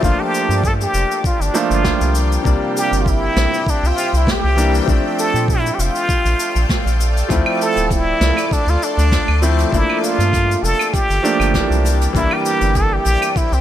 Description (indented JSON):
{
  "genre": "sunset chillout",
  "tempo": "99 BPM",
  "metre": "4/4",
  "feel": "swing 54% on 16ths",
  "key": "unclear",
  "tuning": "A4 = 440 Hz",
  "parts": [
    { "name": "trumpet with plunger mute", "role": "melody", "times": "0.0-13.6 s", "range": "C4 to A4", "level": "-20 LUFS", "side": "equal", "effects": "ping-pong delay" },
    { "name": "bright concert grand piano", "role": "accompaniment", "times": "0.0-13.6 s", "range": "C3 to E4", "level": "-21 LUFS", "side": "moving between left 5 dB and right 7 dB", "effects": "auto-pan, ping-pong delay" },
    { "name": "shimmering ambient pad", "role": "sustained chords", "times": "0.0-13.6 s", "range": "G4 to C6", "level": "-26 LUFS", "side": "left 1 dB", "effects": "chorus, built-in reverb, phaser" },
    { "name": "round analog bass", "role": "bass", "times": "0.0-13.6 s", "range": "D1 to Bb2", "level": "-17 LUFS", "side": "equal", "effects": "none" },
    { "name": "electronic kick drum", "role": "drums", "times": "0.0-13.5 s", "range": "none", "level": "-20 LUFS", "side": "equal", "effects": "none" },
    { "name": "soft brush drum kit", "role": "drums", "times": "0.0-13.6 s", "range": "cabasa, claves, hi-hat, snare drum", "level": "-24 LUFS", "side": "equal", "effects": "none" }
  ],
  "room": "light reverb, small room ambience",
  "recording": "none",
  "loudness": "-14 LUFS",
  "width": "side -11 dB against mid",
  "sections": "0.0-13.6 A section",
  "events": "none",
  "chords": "0.0 Gm7; 2.2 C7; 4.9 Bbmaj7; 7.3 Dm7; 9.7 Gm7; 11.8 C7"
}